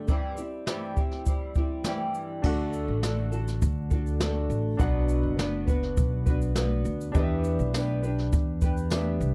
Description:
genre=acoustic pop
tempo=102 BPM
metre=4/4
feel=straight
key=unclear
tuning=A4 = 439 Hz
part: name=nylon-string guitar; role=accompaniment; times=0.0-9.3 s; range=G2 to B4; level=-34 LUFS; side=equal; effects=double-tracked
part: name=jazz brush drum kit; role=drums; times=0.1-9.3 s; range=crash cymbal, kick drum, shaker, snare drum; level=-30 LUFS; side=equal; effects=none
part: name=clear baby grand piano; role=accompaniment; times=2.4-9.3 s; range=D4 to F#5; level=-41 LUFS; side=equal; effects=none
part: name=upright bass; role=bass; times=2.4-9.3 s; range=F#1 to E2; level=-30 LUFS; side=equal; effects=none
part: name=tambourine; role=percussion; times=7.7-9.0 s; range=none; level=-48 LUFS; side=equal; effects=none
room=little or no reverb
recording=none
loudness=-27 LUFS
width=mono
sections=0.0-2.4 A section; 2.4-9.3 B section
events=none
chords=0.1 C/G; 2.4 D; 4.8 Bm; 7.2 Em7

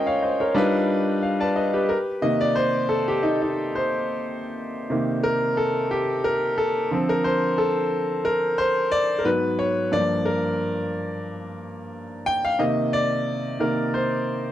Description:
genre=soul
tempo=90 BPM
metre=4/4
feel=swing 54% on 16ths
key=C dorian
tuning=A4 = 440 Hz
part: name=clear concert grand piano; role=solo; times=0.0-14.5 s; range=G2 to A5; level=-21 LUFS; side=equal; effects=none
room=light reverb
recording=dry, close 1970s-style studio recording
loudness=-21 LUFS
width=side -12 dB against mid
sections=0.0-1.9 A section; 1.9-14.5 B section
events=grand piano fill 0.9-1.9; grand piano solo 1.9-14.5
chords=0.0 Db69; 0.6 G7b13; 1.9 Cm7; 6.9 Dm7; 9.3 Abm7; 9.9 Gm7; 12.6 Cm9

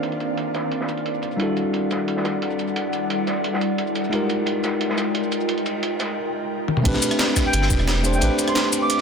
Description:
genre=liquid drum and bass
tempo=176 BPM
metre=4/4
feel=straight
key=unclear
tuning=A4 = 441 Hz
part: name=bell-like tine electric piano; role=accompaniment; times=0.0-9.0 s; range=G3 to C5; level=-24 LUFS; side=equal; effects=vintage 12-bit sampler grit, low-pass filter, ping-pong delay
part: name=ethereal airy pad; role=sustained chords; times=0.0-9.0 s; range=Eb3 to G5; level=-26 LUFS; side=equal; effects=ensemble chorus, built-in reverb, sidechain pumping
part: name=breakbeat sampler-style drum kit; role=drums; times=0.0-9.0 s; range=crash cymbal, hi-hat, rim click, shaker, snare drum, toms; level=-26 LUFS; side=equal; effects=low-pass filter on hats, low-pass filter on perc, low-pass filter on toms, low-pass filter on cymbals, low-pass filter on snare
part: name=crunchy breakbeat drum kit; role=drums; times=0.0-9.0 s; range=hi-hat, ride cymbal, snare drum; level=-30 LUFS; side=left 1 dB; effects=high-pass filter on cymbals, low-pass filter on cymbals, high-pass filter on hats, low-pass filter on hats, high-pass filter on snare, low-pass filter on snare, high-pass filter on room, low-pass filter on room
part: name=warm sub bass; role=bass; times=6.9-8.3 s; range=E1 to A1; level=-21 LUFS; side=equal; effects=none
part: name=electronic kick drum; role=drums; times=6.9-7.8 s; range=none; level=-22 LUFS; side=equal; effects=none
part: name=jazz flute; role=melody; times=7.5-9.0 s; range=G5 to D6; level=-25 LUFS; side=equal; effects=ping-pong delay
room=moderate lush hall reverb, RT60 1.7 s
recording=none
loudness=-20 LUFS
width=side -6 dB against mid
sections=0.0-6.8 A section; 6.8-9.0 B section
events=filter sweep on tine electric piano 0.0-6.8; drum fill 6.7; drop 6.8-9.0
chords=0.0 Cm11; 1.4 Em11; 4.1 Fm11; 6.8 Am11

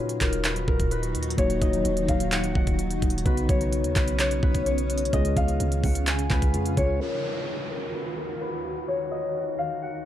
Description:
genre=hip hop, trap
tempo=128 BPM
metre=4/4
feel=half-time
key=Eb minor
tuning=A4 = 440 Hz
part: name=concert harp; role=melody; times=0.0-10.1 s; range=Bb4 to Ab5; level=-29 LUFS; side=left 3 dB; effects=low-pass filter, analog delay
part: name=mellow tine electric piano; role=accompaniment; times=0.0-7.0 s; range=Bb2 to Ab4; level=-30 LUFS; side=left 1 dB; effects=none
part: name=granular cloud pad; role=sustained chords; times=0.0-10.1 s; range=Eb2 to Ab4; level=-33 LUFS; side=right 1 dB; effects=built-in reverb, low-pass filter
part: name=trap drum kit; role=drums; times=0.1-6.9 s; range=handclaps, hi-hat, kick drum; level=-26 LUFS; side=right 1 dB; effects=none
part: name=warm 808-style bass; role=bass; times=0.2-7.0 s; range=Eb1 to F2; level=-28 LUFS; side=equal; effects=none
part: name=downlifter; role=sound effects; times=7.0-10.1 s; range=none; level=-37 LUFS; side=right 1 dB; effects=none
room=little or no reverb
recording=dry, gritty hardware recording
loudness=-23 LUFS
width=side -11 dB against mid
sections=0.0-7.0 A section; 7.0-10.1 B section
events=filter sweep 7.0-10.1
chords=0.0 Ebmadd9; 3.3 Badd9; 5.1 Db; 7.0 Ebmadd9

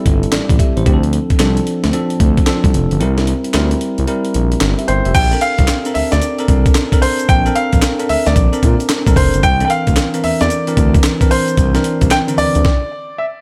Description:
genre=R&B, new jack swing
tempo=112 BPM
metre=4/4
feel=swing 64% on 16ths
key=unclear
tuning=A4 = 441 Hz
part: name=bell-like tine electric piano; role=accompaniment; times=0.0-12.7 s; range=D3 to G5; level=-21 LUFS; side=equal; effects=subtle chorus
part: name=smooth gliding synth bass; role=bass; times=0.1-12.6 s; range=F1 to Bb2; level=-19 LUFS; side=equal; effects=none
part: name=breakbeat sampler-style drum kit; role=drums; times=0.1-12.8 s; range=crash cymbal, handclaps, hi-hat, kick drum, snare drum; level=-18 LUFS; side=equal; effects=none
part: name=clear baby grand piano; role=melody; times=4.9-13.4 s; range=C5 to G5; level=-20 LUFS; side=equal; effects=none
part: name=tube shaker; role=percussion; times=5.1-12.6 s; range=none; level=-36 LUFS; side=equal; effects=none
room=little or no reverb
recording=none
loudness=-14 LUFS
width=mono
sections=0.0-5.1 A section; 5.1-13.4 B section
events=kick muted 3.0-5.1; stop 12.6-13.4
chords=0.0 Am7; 0.9 Dm7; 3.0 C7; 5.1 Bbmaj9; 9.4 C9

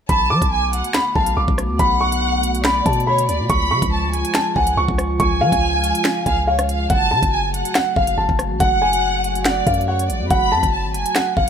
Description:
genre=hip hop, drill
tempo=141 BPM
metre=4/4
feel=half-time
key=F# harmonic minor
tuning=A4 = 440 Hz
part: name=dark concert grand piano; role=melody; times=0.1-11.5 s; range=E#5 to D6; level=-20 LUFS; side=equal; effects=none
part: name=warm studio violin section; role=second line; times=0.1-11.5 s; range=C#5 to B5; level=-22 LUFS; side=equal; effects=ping-pong delay
part: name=dark analog pad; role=sustained chords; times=0.1-11.5 s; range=C#3 to F#4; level=-27 LUFS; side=equal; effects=chorus
part: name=long sustained 808-style bass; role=bass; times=0.1-11.5 s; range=F#1 to F#3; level=-22 LUFS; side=equal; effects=none
part: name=drill drum kit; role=drums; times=0.1-11.5 s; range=finger snaps, hi-hat, kick drum, rim click, snare drum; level=-22 LUFS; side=equal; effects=none
room=light reverb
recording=none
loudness=-16 LUFS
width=side -8 dB against mid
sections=0.1-11.5 A section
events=none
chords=0.1 Bm7; 3.5 C#; 6.9 F#m

